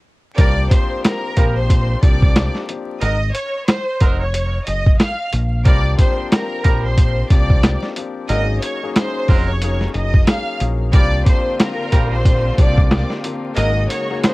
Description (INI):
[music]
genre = hip hop, boom-bap hip-hop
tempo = 91 BPM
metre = 4/4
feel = swing 59% on 16ths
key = C minor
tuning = A4 = 440 Hz
[part]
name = clear studio violin section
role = melody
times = 0.4-14.3 s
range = Bb4 to F6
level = -23 LUFS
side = equal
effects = cassette tape
[part]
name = warm upright piano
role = accompaniment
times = 0.4-14.3 s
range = F3 to Ab4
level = -26 LUFS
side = left 5 dB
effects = cassette tape
[part]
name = warm horn section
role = stabs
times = 0.4-13.7 s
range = Gb3 to Bb4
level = -27 LUFS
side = right 6 dB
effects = cassette tape, analog delay
[part]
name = deep dub fingered electric bass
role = bass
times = 0.4-13.9 s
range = F1 to C2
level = -19 LUFS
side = equal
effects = none
[part]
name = boom bap sampler-style drum kit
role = drums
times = 0.4-14.3 s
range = hi-hat, kick drum, snare drum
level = -14 LUFS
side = equal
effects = none
[part]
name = rich studio string section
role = sustained chords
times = 10.9-14.3 s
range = Db3 to Gb4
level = -28 LUFS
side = equal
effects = cassette tape
[sound]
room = little or no reverb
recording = home recording on cassette, vinyl crackle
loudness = -14 LUFS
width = side -21 dB against mid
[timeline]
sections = 0.4-14.3 A section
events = break 0.0-0.4, 3.0-5.7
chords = 0.4 C9sus4; 3.0 Ab9sus4; 5.7 C9sus4; 8.3 Ab9sus4; 10.9 C9sus4; 13.6 Ab9sus4